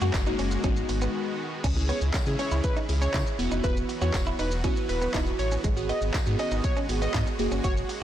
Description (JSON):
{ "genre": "dance-pop", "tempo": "120 BPM", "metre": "4/4", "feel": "straight", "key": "unclear", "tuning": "A4 = 440 Hz", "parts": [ { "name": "glassy digital keys", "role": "accompaniment", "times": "0.0-7.9 s", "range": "G#3 to G#4", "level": "-31 LUFS", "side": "right 1 dB", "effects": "chorus, sidechain pumping" }, { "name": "supersaw pad", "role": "sustained chords", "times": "0.0-8.0 s", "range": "C#3 to F#4", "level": "-37 LUFS", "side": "right 1 dB", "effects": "sidechain pumping" }, { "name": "direct-recorded clean electric guitar", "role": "riff", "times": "0.0-7.9 s", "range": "G#3 to F#4", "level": "-35 LUFS", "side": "right 5 dB", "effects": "lush chorus" }, { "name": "sub bass with octave", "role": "bass", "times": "0.0-7.8 s", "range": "D#1 to C#3", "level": "-28 LUFS", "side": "equal", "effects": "sidechain pumping" }, { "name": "pop drum kit", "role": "drums", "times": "0.0-8.0 s", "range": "crash cymbal, handclaps, hi-hat, kick drum, shaker", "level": "-29 LUFS", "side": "equal", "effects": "none" }, { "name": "tambourine", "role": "percussion", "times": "0.1-7.3 s", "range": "none", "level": "-47 LUFS", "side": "left 6 dB", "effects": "none" }, { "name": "plucky unison lead", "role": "melody", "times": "1.9-7.7 s", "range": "B4 to D#5", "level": "-33 LUFS", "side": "equal", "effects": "sidechain pumping, ping-pong delay" } ], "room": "light reverb, digital ambience", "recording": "blown-out, overdriven recording, overdrive", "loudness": "-24 LUFS", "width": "side -11 dB against mid", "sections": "0.0-1.6 A section; 1.6-8.0 B section", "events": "break 1.1-1.6", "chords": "0.0 F#add9; 0.6 G#m7; 1.6 C#m; 3.4 Esus2; 5.6 G#m7; 7.4 F#add9" }